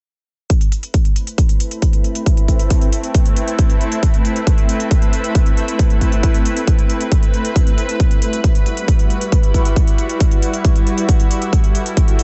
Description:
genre	uplifting trance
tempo	136 BPM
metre	4/4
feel	straight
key	A dorian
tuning	A4 = 440 Hz
part	shimmering ambient pad	sustained chords	1.2-12.2 s	G3 to B4	-24 LUFS	equal	chorus, built-in reverb, sidechain pumping
part	electronic hi-hat	drums	0.5-12.2 s	none	-31 LUFS	equal	sidechain pumping on hats
part	electronic kick drum	drums	0.5-12.1 s	none	-16 LUFS	equal	none
room	little or no reverb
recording	nothing above 8.0 kHz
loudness	-16 LUFS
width	mono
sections	0.5-12.2 A section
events	none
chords	0.5 Amadd9; 7.6 Emadd9

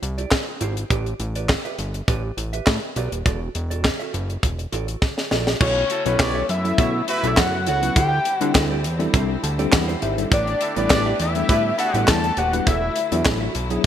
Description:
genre	early-eighties boogie funk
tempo	102 BPM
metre	4/4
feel	straight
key	B minor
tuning	A4 = 440 Hz
part	mellow electric guitar	riff	0.0-13.9 s	E4 to E5	-31 LUFS	right 8 dB	wide subtle chorus
part	fat analog bass	bass	0.0-13.8 s	D#1 to D3	-25 LUFS	equal	none
part	tight funk drum kit	drums	0.0-13.8 s	crash cymbal, handclaps, hi-hat, kick drum, snare drum	-21 LUFS	equal	none
part	fat analog lead	melody	5.6-13.2 s	C#5 to A5	-23 LUFS	left 2 dB	none
part	rich studio string section	sustained chords	5.6-13.9 s	C#3 to G4	-32 LUFS	left 1 dB	none
part	warm horn section	second line	5.9-12.0 s	D4 to E5	-29 LUFS	right 3 dB	none
part	tine electric piano	accompaniment	6.1-13.9 s	F#3 to A5	-26 LUFS	left 2 dB	slow stereo tremolo
room	light reverb, small room reverb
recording	bright 1980s-style digital production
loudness	-19 LUFS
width	side -10 dB against mid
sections	0.0-5.6 A section; 5.6-13.9 B section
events	drum fill 5.0-5.6; tine electric piano fill 9.1-10.3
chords	0.0 D9sus4; 0.9 A9sus4; 3.3 E9sus4; 5.6 B9sus4; 8.0 D9sus4; 10.3 A9sus4; 12.7 E9sus4

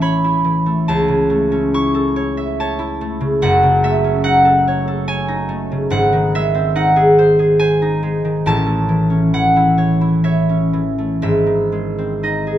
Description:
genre	classical, solo harp piece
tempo	60-73 BPM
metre	3/4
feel	rubato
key	unclear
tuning	A4 = 440 Hz
part	concert harp	solo	0.0-12.6 s	F#1 to C#6	-13 LUFS	equal	none
room	moderate scoring stage reverb, RT60 2.1 s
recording	close, detailed microphones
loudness	-13 LUFS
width	side -11 dB against mid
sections	0.0-12.6 A section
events	none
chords	0.0 A; 0.9 A/C#; 3.4 D#m7b5/F#; 5.9 G#7; 8.4 A; 11.2 G#

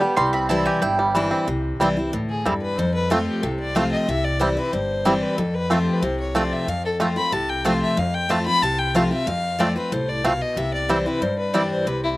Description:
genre	bluegrass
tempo	185 BPM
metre	4/4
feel	straight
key	C major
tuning	A4 = 440 Hz
part	bluegrass banjo	melody	0.0-11.6 s	E3 to G4	-23 LUFS	right 2 dB	slapback echo
part	picked steel-string acoustic guitar	accompaniment	0.0-12.2 s	F2 to G4	-23 LUFS	left 1 dB	none
part	mandolin	stabs	0.2-1.1 s	G5 to C6	-24 LUFS	right 3 dB	none
part	upright bass	bass	0.2-12.2 s	G1 to G2	-29 LUFS	equal	none
part	dark fiddle	melody	2.3-12.1 s	E4 to B5	-24 LUFS	left 2 dB	none
room	little or no reverb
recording	recorded outdoors, with no room sound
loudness	-19 LUFS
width	side -19 dB against mid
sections	0.0-1.5 A section; 1.5-12.2 A section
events	mandolin solo 0.0-1.5; fiddle solo 1.5-12.2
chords	0.2 C; 2.8 F; 4.1 C; 5.4 F; 10.6 C

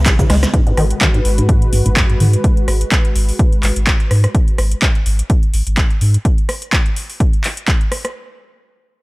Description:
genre	acid house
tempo	126 BPM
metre	4/4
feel	swing 55% on 16ths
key	G# minor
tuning	A4 = 439 Hz
part	warm analog pad	sustained chords	0.0-4.3 s	C#3 to B4	-24 LUFS	left 1 dB	chorus, sidechain pumping
part	saturated sub bass	bass	0.0-6.2 s	G#1 to G#2	-14 LUFS	equal	sidechain pumping
part	deep acid bass	riff	0.1-2.3 s	G#2 to G#3	-18 LUFS	equal	overdrive, lush chorus, tape echo
part	electro analog drum machine	drums	0.1-8.1 s	handclaps, hi-hat, ride cymbal, rim click, shaker, snare drum	-20 LUFS	equal	overdrive
part	electronic kick drum	drums	0.1-7.8 s	none	-14 LUFS	equal	none
room	little or no reverb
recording	none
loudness	-12 LUFS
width	side -22 dB against mid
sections	0.5-8.2 A section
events	filter sweep on acid bass 0.5-2.4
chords	0.0 C#m7; 0.5 G#m7

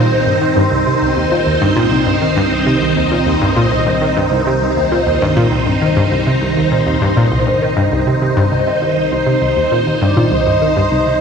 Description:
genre	ambient, sequencer-driven space music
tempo	100 BPM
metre	4/4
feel	straight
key	C minor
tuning	A4 = 440 Hz
part	phased string machine	sustained chords	0.0-11.2 s	Eb3 to C5	-15 LUFS	equal	ensemble chorus, phaser
part	analog pluck	riff	0.0-11.1 s	C2 to Eb3	-16 LUFS	equal	chorus, tape echo
part	fat analog bass	bass	0.0-11.2 s	C2	-28 LUFS	equal	none
part	soft octave-layered synth lead	melody	9.1-11.2 s	C5 to Eb5	-17 LUFS	equal	chorus, tape echo
room	wet concert hall reverb, RT60 2.3 s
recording	cassette tape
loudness	-12 LUFS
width	side -6 dB against mid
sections	0.0-11.2 A section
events	none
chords	0.0 Cm

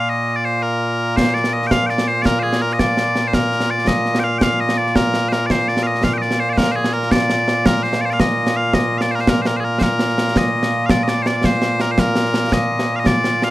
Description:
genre	scottish traditional, Scottish pipe music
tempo	111 BPM (dotted quarters)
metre	6/8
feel	straight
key	Bb major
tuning	A4 = 441 Hz
part	loud bright bagpipes	melody	0.0-13.5 s	Bb2 to G5	-17 LUFS	equal	none
part	concert snare drum and concert bass drum	drums	1.2-13.5 s	none	-19 LUFS	equal	none
room	moderate studio reverb, RT60 0.5 s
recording	rough home demo mix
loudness	-15 LUFS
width	side -16 dB against mid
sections	0.0-1.2 A section; 1.2-9.8 A section; 9.8-13.5 B section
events	none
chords	none

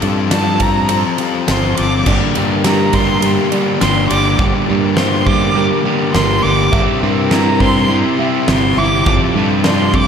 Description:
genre	post-rock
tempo	103 BPM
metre	4/4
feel	straight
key	G dorian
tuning	A4 = 440 Hz
part	electric guitar through a small old amp	arpeggios	0.0-10.1 s	G3 to Bb4	-23 LUFS	left 3 dB	lush chorus, diffuse ambient delay
part	felt-muted upright piano	arpeggios	0.0-10.1 s	Bb4 to E5	-27 LUFS	right 3 dB	diffuse ambient delay
part	thick fuzz guitar	riff	0.0-10.1 s	F3 to A4	-19 LUFS	left 9 dB	distortion
part	growling fingered electric bass	bass	0.0-10.1 s	G1 to G2	-18 LUFS	right 1 dB	overdrive
part	huge arena drum kit	drums	0.0-10.1 s	crash cymbal, kick drum, ride cymbal, snare drum	-19 LUFS	equal	none
part	dark violin	melody	0.3-10.1 s	A5 to D6	-20 LUFS	right 1 dB	diffuse ambient delay
part	crunchy overdriven guitar	riff	2.1-10.1 s	F2 to C4	-19 LUFS	right 10 dB	none
room	wet plate reverb, RT60 2.3 s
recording	dreamy mix soaked in reverb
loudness	-12 LUFS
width	side -7 dB against mid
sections	0.0-10.1 A section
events	build-up 0.0-10.1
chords	0.0 Fadd9/G; 2.1 Gm; 6.7 C7/G; 9.1 Fadd9/G

